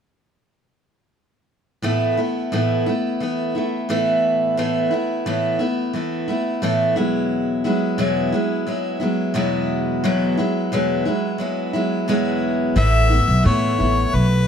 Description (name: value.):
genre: acoustic pop.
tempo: 88 BPM.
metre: 4/4.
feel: straight.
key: unclear.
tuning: A4 = 440 Hz.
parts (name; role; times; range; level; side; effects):
picked steel-string acoustic guitar; accompaniment; 1.8-14.5 s; E2 to E4; -19 LUFS; equal; none.
clear harmonica; melody; 12.8-14.5 s; B4 to E5; -20 LUFS; left 3 dB; slapback echo.
upright bass; bass; 12.8-14.5 s; A1 to A2; -17 LUFS; equal; none.
room: light reverb.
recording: none.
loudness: -18 LUFS.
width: side -7 dB against mid.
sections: 1.8-12.8 A section; 12.8-14.5 B section.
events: none.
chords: 1.8 Asus2; 7.0 Eadd9; 12.8 Asus2.